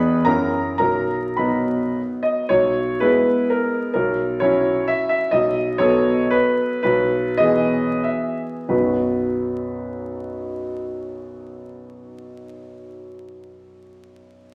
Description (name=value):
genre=classical, romantic triple-time dance for piano with dotted rhythms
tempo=86-138 BPM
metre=3/4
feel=rubato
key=B major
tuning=A4 = 440 Hz
part: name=clear concert grand piano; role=solo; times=0.0-14.5 s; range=B1 to B5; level=-21 LUFS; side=equal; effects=none
room=wet recital hall reverb, RT60 1.3 s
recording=vinyl crackle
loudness=-20 LUFS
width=mono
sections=0.0-2.5 A section; 2.5-8.7 B section; 8.7-12.6 C section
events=slowing down 4.7-8.7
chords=0.3 F#7; 0.8 B; 2.5 E/B; 4.0 F#7/B; 5.3 B7; 6.8 E/B; 8.7 B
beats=0.26 | 0.80 1.38 1.98 | 2.50 3.01 3.51 | 3.96 4.42 4.88 | 5.33 5.79 6.32 | 6.84 7.40 8.05 | 8.71 9.34 10.01 | 10.65 11.32 11.98